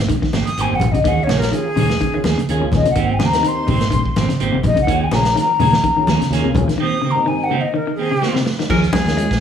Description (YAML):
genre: afrobeat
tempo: 126 BPM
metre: 4/4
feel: swing 55% on 16ths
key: Eb mixolydian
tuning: A4 = 438 Hz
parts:
  - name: clean electric guitar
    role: stabs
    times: 0.0-9.3 s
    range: Eb3 to Ab4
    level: -24 LUFS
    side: right 7 dB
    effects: none
  - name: fingered electric bass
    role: bass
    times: 0.0-9.4 s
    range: G1 to Eb2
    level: -21 LUFS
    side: right 1 dB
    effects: none
  - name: semi-hollow electric guitar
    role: arpeggios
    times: 0.1-9.3 s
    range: C3 to Ab3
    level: -22 LUFS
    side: left 3 dB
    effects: none
  - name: vintage drum kit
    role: drums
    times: 0.1-9.4 s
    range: crash cymbal, hi-hat, kick drum, snare drum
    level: -23 LUFS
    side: right 1 dB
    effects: none
  - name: congas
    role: percussion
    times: 0.1-9.1 s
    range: none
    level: -22 LUFS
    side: left 2 dB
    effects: none
  - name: breathy mellow jazz flute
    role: melody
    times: 0.5-8.4 s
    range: Ab4 to Eb6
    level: -19 LUFS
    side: left 2 dB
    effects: slapback echo
  - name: mellow tonewheel organ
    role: accompaniment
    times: 0.9-9.3 s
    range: Ab2 to Ab4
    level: -26 LUFS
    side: left 2 dB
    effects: slow rotary speaker, chorus vibrato
  - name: edgy tenor saxophone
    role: melody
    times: 8.7-9.4 s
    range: Ab4 to Bb4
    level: -22 LUFS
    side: left 1 dB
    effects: none
room: moderate large studio reverb, RT60 0.9 s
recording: small room reverb, faint mains hum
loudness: -14 LUFS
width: side -8 dB against mid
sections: 0.0-8.7 A section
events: flute solo 0.0-8.7; break 6.8-8.7; drum fill 8.2-8.7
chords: 0.0 Abmaj9; 1.1 Eb7sus4; 3.0 Abmaj9; 4.9 Eb7sus4; 6.8 Abmaj9; 8.7 Eb7sus4